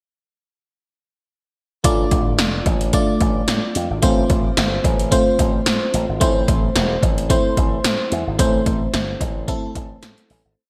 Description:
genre	1980s-style pop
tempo	110 BPM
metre	4/4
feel	swing 55% on 16ths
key	A minor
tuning	A4 = 440 Hz
part	FM electric piano	accompaniment	1.8-10.6 s	A3 to D5	-23 LUFS	equal	chorus, phaser, shimmer reverb
part	slap bass with an envelope filter	bass	1.8-10.5 s	E1 to A2	-26 LUFS	equal	none
part	80s electronic pad drums	drums	1.8-10.4 s	hi-hat, kick drum, snare drum	-22 LUFS	equal	gated reverb
room	moderate lush hall reverb, RT60 1.8 s, digital ambience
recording	bright 1980s-style digital production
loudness	-19 LUFS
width	mono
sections	1.8-10.6 verse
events	fade-out 8.4-10.6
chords	1.8 Dm; 4.0 F; 6.2 Am

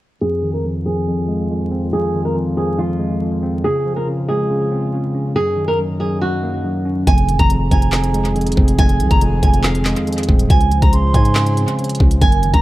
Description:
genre	hip hop, trap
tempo	140 BPM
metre	4/4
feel	half-time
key	F phrygian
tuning	A4 = 439 Hz
part	flamenco guitar	melody	0.2-12.6 s	F4 to Bb5	-21 LUFS	right 2 dB	low-pass filter, tape echo
part	mellow tine electric piano	accompaniment	0.2-12.6 s	F2 to Db4	-20 LUFS	equal	overdrive, low-pass filter, tape echo
part	mellow French horn section	sustained chords	0.2-12.6 s	Db2 to C5	-30 LUFS	right 1 dB	low-pass filter
part	growling 808-style bass	bass	7.1-12.6 s	Eb1 to Ab2	-17 LUFS	equal	none
part	trap drum kit	drums	7.1-12.6 s	handclaps, hi-hat, kick drum, snare drum	-15 LUFS	equal	none
part	mellow hollow jazz flute	second line	7.5-11.7 s	Ab5 to C6	-27 LUFS	right 4 dB	tape echo
room	small room ambience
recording	echo-heavy mix, vinyl crackle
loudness	-14 LUFS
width	side -16 dB against mid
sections	0.2-7.1 A section; 7.1-12.6 B section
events	filter sweep 0.2-7.1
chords	0.2 Fm7; 3.6 Dbmaj7; 5.4 Gb6; 7.1 Fm7; 10.5 Dbmaj7

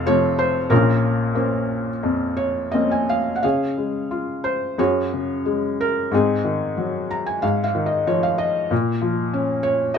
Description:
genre	classical, lyrical solo piano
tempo	90 BPM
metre	4/4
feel	uneven beats, rubato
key	Bb minor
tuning	A4 = 436 Hz
part	felt-muted upright piano	solo	0.0-10.0 s	F1 to Bb5	-19 LUFS	left 1 dB	none
room	moderate small room reverb, RT60 0.5 s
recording	dark, warm production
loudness	-19 LUFS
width	side -7 dB against mid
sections	0.0-3.4 A section; 3.4-10.0 B section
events	felt piano fill 2.4-3.4, 6.8-8.7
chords	0.0 F; 0.7 Bbmadd9; 3.4 Db; 4.8 Gbsus2; 6.1 Ab7; 7.4 Ab6; 8.7 Bbm

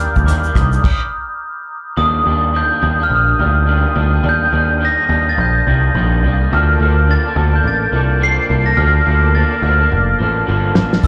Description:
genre	indie pop, bedroom pop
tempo	106 BPM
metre	4/4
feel	swing 60% on 16ths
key	Eb lydian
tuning	A4 = 440 Hz
part	glockenspiel with rubber mallets	melody	0.0-11.1 s	D6 to C7	-19 LUFS	equal	analog chorus, slapback echo
part	electric guitar through a small old amp	accompaniment	0.0-11.1 s	Gb2 to A4	-26 LUFS	equal	ensemble chorus, warbly pitch drift, slapback echo
part	lush unison pad	sustained chords	0.0-11.1 s	Bb3 to Fb6	-29 LUFS	equal	chorus
part	picked electric bass	bass	0.0-11.1 s	F1 to Eb2	-17 LUFS	equal	none
part	cloth-damped thuddy drum kit	drums	0.2-1.0, 10.8-11.1 s	crash cymbal, hi-hat, kick drum, rim click, shaker, snare drum	-17 LUFS	equal	none
room	studio reverb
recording	live gig heard through the venue's PA, club reverb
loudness	-15 LUFS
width	mono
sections	0.0-2.0 A section; 2.0-11.1 B section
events	stop 0.8-2.0; drum fill 9.9-11.0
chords	0.0 Ebmaj7; 6.5 Bbmaj7

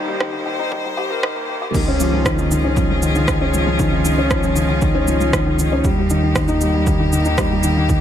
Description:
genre	piano and strings electronica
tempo	117 BPM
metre	4/4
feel	straight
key	unclear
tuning	A4 = 437 Hz
part	clear string quartet	sustained chords	0.0-8.0 s	Eb2 to C5	-24 LUFS	equal	sidechain pumping
part	felt-muted upright piano	riff	0.0-8.0 s	Eb3 to Bb4	-19 LUFS	left 2 dB	digital delay
part	deep house drum kit	drums	0.2-8.0 s	crash cymbal, rim click, shaker	-26 LUFS	right 2 dB	overdrive
part	electronic kick drum	drums	0.2-8.0 s	none	-22 LUFS	right 1 dB	overdrive
part	round analog bass	bass	1.7-8.0 s	Db2 to Eb2	-21 LUFS	right 1 dB	sidechain pumping
room	light reverb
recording	high-pass filter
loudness	-15 LUFS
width	side -10 dB against mid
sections	0.0-1.7 A section; 1.7-8.0 B section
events	build-up 0.0-1.7; drop 1.7-8.0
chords	0.0 Eb; 1.7 Dbadd9; 5.8 Eb

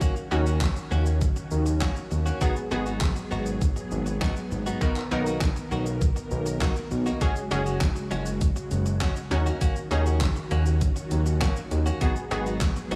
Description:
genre	dance-pop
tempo	100 BPM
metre	4/4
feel	straight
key	unclear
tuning	A4 = 440 Hz
part	unison pluck	accompaniment	0.0-13.0 s	B3 to A#4	-34 LUFS	equal	sidechain pumping
part	string machine, cellos	sustained chords	0.0-13.0 s	C#3 to A#4	-37 LUFS	equal	ensemble chorus, sidechain pumping
part	direct-recorded clean electric guitar	riff	0.0-13.0 s	G#3 to F#4	-36 LUFS	equal	subtle chorus
part	pop drum kit	drums	0.0-13.0 s	handclaps, hi-hat, kick drum, shaker, snare drum	-29 LUFS	equal	overdrive
part	fat analog bass	bass	0.3-13.0 s	F#1 to D#2	-28 LUFS	equal	sidechain pumping
room	digital ambience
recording	small room ambience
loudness	-26 LUFS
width	mono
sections	0.0-13.0 A section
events	none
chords	0.0 D#m7; 2.4 G#m7; 4.8 Bmaj7; 7.2 F#sus2; 9.3 D#m7; 12.0 G#m7

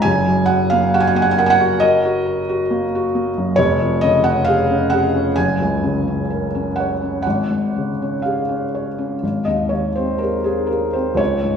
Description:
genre	classical, romantic nocturne for solo piano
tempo	59-70 BPM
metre	4/4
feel	rubato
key	Db major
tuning	A4 = 441 Hz
part	felt-muted upright piano	solo	0.0-11.6 s	F1 to Ab5	-16 LUFS	equal	none
room	wet stone room reverb, RT60 1.3 s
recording	heard from further back in the room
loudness	-16 LUFS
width	side -7 dB against mid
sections	0.0-11.6 A section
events	none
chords	0.0 Ebm/Gb; 3.6 Db/F; 5.3 Gb; 7.2 Db/Ab; 9.2 Ab

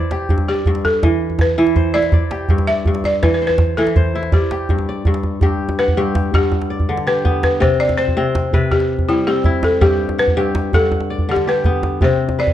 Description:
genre	west african traditional, West African string and xylophone music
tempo	109 BPM (dotted quarters)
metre	12/8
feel	straight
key	G major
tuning	A4 = 440 Hz
part	kora	arpeggios	0.0-12.5 s	G2 to F#5	-19 LUFS	left 1 dB	none
part	djembe	percussion	0.0-12.5 s	none	-18 LUFS	right 1 dB	none
part	balafon	melody	0.5-12.5 s	E4 to E5	-18 LUFS	left 1 dB	none
room	light reverb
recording	dark, warm production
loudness	-14 LUFS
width	side -11 dB against mid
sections	0.0-5.4 A section; 5.4-12.5 B section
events	balafon solo 5.4-12.5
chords	0.0 G5; 1.0 E5; 2.1 G5; 3.2 Amadd9/E; 4.3 G5; 5.4 G; 7.6 C; 9.8 G; 12.0 C5

